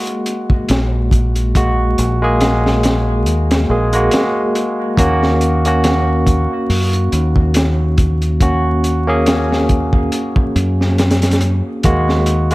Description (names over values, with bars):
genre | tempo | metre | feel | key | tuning
trip hop | 70 BPM | 4/4 | swing 56% on 16ths | Eb minor | A4 = 440 Hz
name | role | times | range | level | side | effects
barky tine electric piano | accompaniment | 0.0-12.5 s | Ab3 to Ab4 | -17 LUFS | equal | harmonic tremolo, tape echo
crunchy breakbeat drum kit | drums | 0.1-12.5 s | hi-hat, kick drum, snare drum | -17 LUFS | equal | none
deep dub fingered electric bass | bass | 0.7-12.5 s | Bb1 to Gb2 | -16 LUFS | equal | tube saturation
room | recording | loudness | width
small room ambience | vinyl crackle | -12 LUFS | side -20 dB against mid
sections
0.0-12.5 A section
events
none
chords
0.0 Gbadd9; 5.0 Ebm7; 11.8 Gbadd9